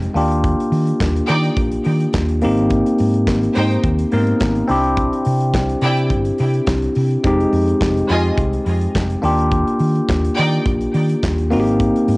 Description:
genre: disco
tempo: 106 BPM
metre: 4/4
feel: straight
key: unclear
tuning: A4 = 440 Hz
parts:
  - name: bell-like tine electric piano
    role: accompaniment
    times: 0.0-12.2 s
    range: Ab3 to Bb4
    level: -18 LUFS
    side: left 1 dB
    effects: phaser, cassette tape
  - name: hollow-body short-scale fingered electric bass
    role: bass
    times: 0.0-12.2 s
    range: F1 to Eb3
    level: -19 LUFS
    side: equal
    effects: none
  - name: modern studio drum kit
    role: drums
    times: 0.0-12.2 s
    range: handclaps, hi-hat, kick drum, snare drum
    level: -23 LUFS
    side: equal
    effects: cassette tape
  - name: clear studio string section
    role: second line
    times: 1.3-10.6 s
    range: Eb4 to Ab5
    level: -23 LUFS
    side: right 1 dB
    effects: cassette tape, analog delay
room: small room ambience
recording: home recording on cassette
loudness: -14 LUFS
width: side -24 dB against mid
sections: 0.0-12.2 A section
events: none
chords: 0.1 Ebmaj7; 2.4 Abmaj7; 4.7 Cadd9; 7.2 Fm7; 9.2 Ebmaj7; 11.5 Abmaj7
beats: | 0.43 1.00 1.57 2.14 | 2.70 3.27 3.84 4.41 | 4.97 5.54 6.11 6.68 | 7.24 7.81 8.38 8.95 | 9.52 10.09 10.65 11.22 | 11.79

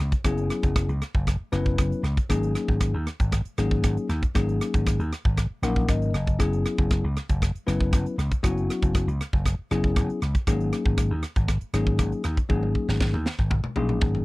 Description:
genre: electric jazz fusion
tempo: 118 BPM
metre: 4/4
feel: straight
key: unclear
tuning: A4 = 440 Hz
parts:
  - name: vintage slap bass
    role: bass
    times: 0.0-14.2 s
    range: F#1 to D#2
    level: -25 LUFS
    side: equal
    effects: none
  - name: crisp fusion drum kit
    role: drums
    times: 0.1-14.2 s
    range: hi-hat, kick drum, rim click, snare drum, toms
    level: -25 LUFS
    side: equal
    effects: none
  - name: bell-like tine electric piano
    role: accompaniment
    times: 0.2-14.2 s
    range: F#3 to F#5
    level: -27 LUFS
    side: left 3 dB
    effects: none
room: little or no reverb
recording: dry, close 1970s-style studio recording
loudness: -22 LUFS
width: side -21 dB against mid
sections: 0.0-14.2 A section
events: tine electric piano fill 5.4-6.4; drum fill 12.5-14.2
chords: 0.0 F#9sus4; 2.3 G#9sus4; 6.4 F#9sus4; 10.5 G#9sus4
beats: | 0.25 0.76 1.27 1.79 | 2.30 2.81 3.33 3.84 | 4.35 4.86 5.37 5.88 | 6.40 6.91 7.42 7.93 | 8.44 8.95 9.45 9.96 | 10.47 10.98 11.49 11.99 | 12.50 13.01 13.51 14.02

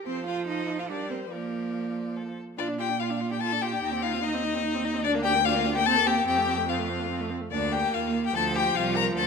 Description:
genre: quick classical-period movement for string quartet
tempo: 145 BPM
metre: 3/4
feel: straight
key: Bb major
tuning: A4 = 440 Hz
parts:
  - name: rich violin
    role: melody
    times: 0.1-9.3 s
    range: Bb4 to Bb5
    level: -28 LUFS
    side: left 10 dB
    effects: none
  - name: rich violin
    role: second line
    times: 0.1-9.3 s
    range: D4 to D5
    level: -32 LUFS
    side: left 3 dB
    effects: none
  - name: rich viola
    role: accompaniment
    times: 0.1-9.3 s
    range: F3 to F4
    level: -32 LUFS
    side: right 3 dB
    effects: none
  - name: rich cello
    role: bass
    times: 0.1-9.3 s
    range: C2 to F4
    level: -31 LUFS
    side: right 5 dB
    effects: none
room: moderate recital hall reverb, RT60 1.6 s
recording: none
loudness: -24 LUFS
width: side -5 dB against mid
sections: 0.0-2.6 A section; 2.6-9.3 B section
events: none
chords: 0.1 F; 0.9 Gm; 1.3 Bb/F; 2.2 F; 2.6 Bb; 3.8 Cm/Eb; 5.0 Bb/D; 5.9 Cm7/Eb; 6.3 F; 7.5 Bb/D; 8.8 F5/C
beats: | 0.07 0.48 0.90 | 1.32 1.75 2.17 | 2.58 3.00 3.42 | 3.83 4.24 4.64 | 5.04 5.45 5.86 | 6.27 6.68 7.10 | 7.52 7.93 8.35 | 8.76 9.16

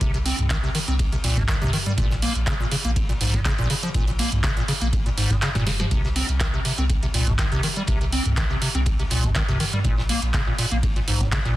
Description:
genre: acid house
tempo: 122 BPM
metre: 4/4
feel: swing 53% on 16ths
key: C phrygian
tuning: A4 = 440 Hz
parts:
  - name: acid bass, square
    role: riff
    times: 0.0-11.5 s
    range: Ab2 to C4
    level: -26 LUFS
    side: equal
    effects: lush chorus, tape echo
  - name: warm sub bass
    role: bass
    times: 0.0-11.5 s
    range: F1 to C2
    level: -26 LUFS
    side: equal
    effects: tube saturation, sidechain pumping
  - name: booming analog drum machine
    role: drums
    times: 0.0-11.5 s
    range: handclaps, hi-hat, snare drum, toms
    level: -26 LUFS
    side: right 1 dB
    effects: none
  - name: cloth-damped thuddy drum kit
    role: drums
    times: 0.0-11.4 s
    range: ride cymbal, snare drum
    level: -37 LUFS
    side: left 3 dB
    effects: sidechain pumping on cymbals, high-pass filter on cymbals, high-pass filter on snare, high-pass filter on room
  - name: electronic kick drum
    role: drums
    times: 0.0-11.4 s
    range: none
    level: -25 LUFS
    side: equal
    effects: none
room: light reverb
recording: dense, heavily limited modern master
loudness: -20 LUFS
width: side -15 dB against mid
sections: 0.0-11.6 A section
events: kick drops out 5.4-5.9; drum fill 5.5-5.9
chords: none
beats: | 0.01 0.50 0.99 1.49 | 1.98 2.47 2.96 3.45 | 3.95 4.44 4.93 5.42 | 5.91 6.41 6.90 7.39 | 7.88 8.37 8.86 9.36 | 9.85 10.34 10.83 11.32

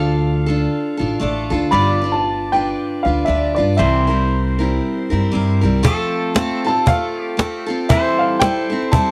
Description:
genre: acoustic folk duo or small band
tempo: 116 BPM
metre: 4/4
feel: swing 58% on 8ths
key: F major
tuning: A4 = 439 Hz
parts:
  - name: warm upright piano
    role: melody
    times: 0.0-9.1 s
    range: D5 to B5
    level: -22 LUFS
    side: equal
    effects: cassette tape
  - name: pedal steel guitar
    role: second line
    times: 0.0-9.1 s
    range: A4 to F5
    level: -28 LUFS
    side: equal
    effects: cassette tape
  - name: picked steel-string acoustic guitar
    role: accompaniment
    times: 0.0-9.1 s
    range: C3 to B4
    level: -22 LUFS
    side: equal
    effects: cassette tape
  - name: upright bass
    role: bass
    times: 0.0-5.8 s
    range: G1 to G2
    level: -22 LUFS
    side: equal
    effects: none
  - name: cajon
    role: percussion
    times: 5.8-9.1 s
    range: none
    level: -18 LUFS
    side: equal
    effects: none
room: moderate booth ambience, RT60 0.2 s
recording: home recording on cassette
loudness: -18 LUFS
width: mono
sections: 0.0-5.8 A section; 5.8-9.1 B section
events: none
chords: 0.0 Dm; 1.7 G7; 3.8 C7; 5.8 F; 7.9 C6/E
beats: 0.18 0.70 1.21 | 1.73 2.24 2.76 3.27 | 3.79 4.30 4.82 5.33 | 5.85 6.36 6.88 7.39 | 7.91 8.42 8.93

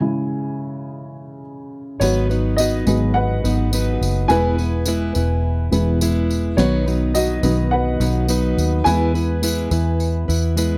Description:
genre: piano-driven pop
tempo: 105 BPM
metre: 4/4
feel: swing 56% on 16ths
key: G# minor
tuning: A4 = 440 Hz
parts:
  - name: dark upright piano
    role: accompaniment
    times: 0.0-10.8 s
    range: C#3 to G#5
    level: -24 LUFS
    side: equal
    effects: none
  - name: fingerpicked plugged-in steel-string acoustic guitar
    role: riff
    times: 2.0-10.8 s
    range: G#2 to B4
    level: -26 LUFS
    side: equal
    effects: none
  - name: vintage muted fingered electric bass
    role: bass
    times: 2.0-10.8 s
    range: E1 to E2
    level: -22 LUFS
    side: equal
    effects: none
  - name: tambourine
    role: percussion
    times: 2.0-10.7 s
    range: none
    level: -32 LUFS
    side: equal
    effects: none
room: little or no reverb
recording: dry, close 1970s-style studio recording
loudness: -19 LUFS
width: mono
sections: 0.0-2.0 A section; 2.0-10.8 B section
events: upright piano solo 0.0-2.0, 2.0-10.8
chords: 0.0 C#m; 2.0 G#m7; 4.3 E; 6.6 B; 8.9 E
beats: 0.29 0.86 1.44 | 2.01 2.58 3.15 3.72 | 4.29 4.87 5.44 6.01 | 6.58 7.15 7.72 8.29 | 8.86 9.43 10.00 10.57

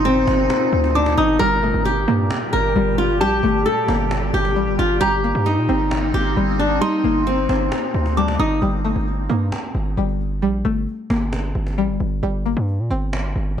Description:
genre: hip hop, trap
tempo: 133 BPM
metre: 4/4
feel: half-time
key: G minor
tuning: A4 = 441 Hz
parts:
  - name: flamenco guitar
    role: melody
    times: 0.0-8.6 s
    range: C4 to Bb4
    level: -20 LUFS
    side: left 1 dB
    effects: digital delay
  - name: soft synth bell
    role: second line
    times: 0.0-8.6 s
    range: A5 to Eb6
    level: -27 LUFS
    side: right 2 dB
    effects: chorus, tremolo, digital delay
  - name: granular cloud pad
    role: sustained chords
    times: 0.0-8.6 s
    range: Bb2 to G4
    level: -25 LUFS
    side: equal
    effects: built-in reverb
  - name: distorted 808-style bass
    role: bass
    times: 0.0-13.6 s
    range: G1 to Bb2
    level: -22 LUFS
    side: equal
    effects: distortion
  - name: cajon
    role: drums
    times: 0.0-13.4 s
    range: none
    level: -31 LUFS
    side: equal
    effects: vintage 12-bit sampler grit
  - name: string-like resonator pluck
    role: accompaniment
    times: 1.4-13.6 s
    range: G3 to C4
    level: -24 LUFS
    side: left 2 dB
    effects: chorus, phaser
room: light reverb, studio reverb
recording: none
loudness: -17 LUFS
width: side -9 dB against mid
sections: 0.0-8.6 A section; 8.6-13.6 B section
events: none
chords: 0.0 Cm7/G; 1.4 Gmadd9; 5.0 Cm7/G; 8.6 Gmadd9; 12.2 C5/G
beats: 0.05 0.50 0.95 | 1.40 1.85 2.30 2.75 | 3.21 3.66 4.11 4.56 | 5.01 5.46 5.91 6.36 | 6.82 7.27 7.72 8.17 | 8.62 9.07 9.52 9.97 | 10.43 10.88 11.33 11.78 | 12.23 12.68 13.13 13.58

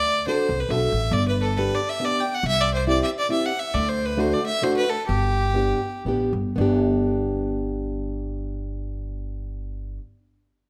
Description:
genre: alpine folk, alpine dance band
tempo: 113-141 BPM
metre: 3/4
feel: swing 54% on 8ths, rubato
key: G major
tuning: A4 = 440 Hz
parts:
  - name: rich fiddle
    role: melody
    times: 0.0-6.0 s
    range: G4 to G5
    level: -26 LUFS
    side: equal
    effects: none
  - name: upright bass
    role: bass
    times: 0.0-10.0 s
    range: G1 to D2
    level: -28 LUFS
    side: equal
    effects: none
  - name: fingerpicked plugged-in steel-string acoustic guitar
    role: accompaniment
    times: 0.3-10.0 s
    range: A3 to A4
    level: -28 LUFS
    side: equal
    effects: none
room: moderate recital hall reverb, RT60 1.3 s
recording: none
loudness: -23 LUFS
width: mono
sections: 0.0-6.6 A section; 6.6-9.7 B section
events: slowing down 3.7-6.6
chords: 0.0 D; 1.1 G; 2.5 C; 3.7 D; 5.1 G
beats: 0.27 0.70 | 1.14 1.58 2.02 | 2.45 2.88 3.31 | 3.74 4.18 4.62 | 5.08 5.55 6.06 | 6.58 7.11 7.63 | 8.14 8.66 9.18

